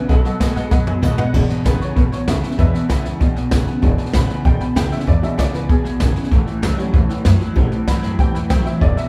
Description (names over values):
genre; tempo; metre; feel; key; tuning
rockabilly; 193 BPM; 4/4; straight; E mixolydian; A4 = 441 Hz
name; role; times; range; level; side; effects
electric guitar through a small old amp; melody; 0.0-1.0 s; A4; -32 LUFS; equal; none
honky-tonk upright piano; accompaniment; 0.0-9.1 s; F#3 to B5; -29 LUFS; equal; none
picked steel-string acoustic guitar; accompaniment; 0.0-9.1 s; E2 to F#4; -30 LUFS; equal; none
electric guitar through a small old amp; riff; 0.0-9.1 s; E2 to G#3; -25 LUFS; equal; phaser
upright bass; bass; 0.1-9.0 s; E1 to A2; -23 LUFS; equal; none
jazz brush drum kit; drums; 0.1-9.0 s; crash cymbal, hi-hat, kick drum, snare drum, toms; -20 LUFS; equal; none
room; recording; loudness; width
light reverb; band playing live in one room; -17 LUFS; mono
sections
0.0-1.3 A section; 1.3-9.1 B section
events
drum fill 0.7-1.3; honky-tonk piano solo 1.3-9.1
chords
0.1 B7; 1.3 E7; 6.3 A7; 7.6 Am7